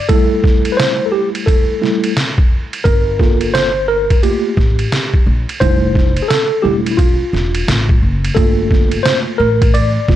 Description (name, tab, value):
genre	hip hop, jazz-hop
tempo	87 BPM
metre	4/4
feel	swing 63% on 16ths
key	G dorian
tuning	A4 = 441 Hz
part	tine electric piano	accompaniment	0.0-10.2 s	G3 to D5	-15 LUFS	right 1 dB	overdrive, fast stereo tremolo
part	trip hop sampler-style drum kit	drums	0.1-10.2 s	hi-hat, kick drum, ride cymbal, snare drum	-14 LUFS	equal	none
part	upright bass	bass	2.9-10.2 s	E1 to Bb1	-18 LUFS	equal	none
room	little or no reverb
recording	dark, warm production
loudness	-12 LUFS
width	side -12 dB against mid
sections	0.0-2.9 A section; 2.9-10.2 A section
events	tine electric piano solo 0.0-2.9, 2.9-10.2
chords	0.1 Gsus2; 2.9 Gm9; 5.6 Fmaj7; 8.4 Gm9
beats	| 0.09 0.78 1.47 2.16 | 2.85 3.54 4.23 4.92 | 5.61 6.30 6.99 7.68 | 8.37 9.06 9.75